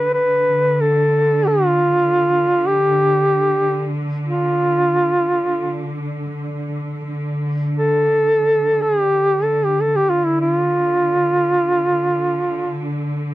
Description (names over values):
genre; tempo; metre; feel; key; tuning
caucasian folk, Caucasian lament; free time; none; none; D dorian; A4 = 440 Hz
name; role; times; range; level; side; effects
mellow duduk; melody; 0.0-12.9 s; E4 to B4; -15 LUFS; equal; none
rich symphonic string section; drone; 0.0-13.3 s; D3; -23 LUFS; equal; none
room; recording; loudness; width
little or no reverb; dry, close 1970s-style studio recording; -15 LUFS; side -16 dB against mid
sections
0.0-13.3 A section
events
none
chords
none